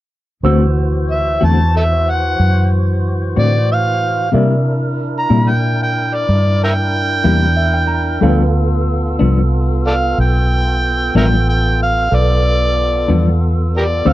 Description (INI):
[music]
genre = slow blues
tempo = 62 BPM (dotted quarters)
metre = 12/8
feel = straight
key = G mixolydian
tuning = A4 = 440 Hz
[part]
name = dark concert grand piano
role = accompaniment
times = 0.4-14.1 s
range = F#4 to E6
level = -25 LUFS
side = right 4 dB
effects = none
[part]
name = tonewheel organ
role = sustained chords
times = 0.4-14.1 s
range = E3 to C5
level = -23 LUFS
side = equal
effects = slow rotary speaker
[part]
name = vintage muted fingered electric bass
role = bass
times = 0.4-14.1 s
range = A1 to C3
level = -15 LUFS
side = equal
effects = none
[part]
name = clean electric guitar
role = accompaniment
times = 0.5-14.1 s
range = G2 to F#4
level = -17 LUFS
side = left 4 dB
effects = tremolo
[part]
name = overdriven harmonica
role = melody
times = 1.1-14.1 s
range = G4 to Bb5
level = -18 LUFS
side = right 1 dB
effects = none
[sound]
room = little or no reverb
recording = dry, close 1970s-style studio recording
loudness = -12 LUFS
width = side -15 dB against mid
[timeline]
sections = 0.4-14.1 A section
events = grand piano fill 7.3-8.2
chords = 0.4 D7; 4.3 C7; 8.2 G7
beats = | 0.45 1.42 2.39 3.37 | 4.34 5.31 6.29 7.26 | 8.23 9.20 10.18 11.15 | 12.12 13.09 14.06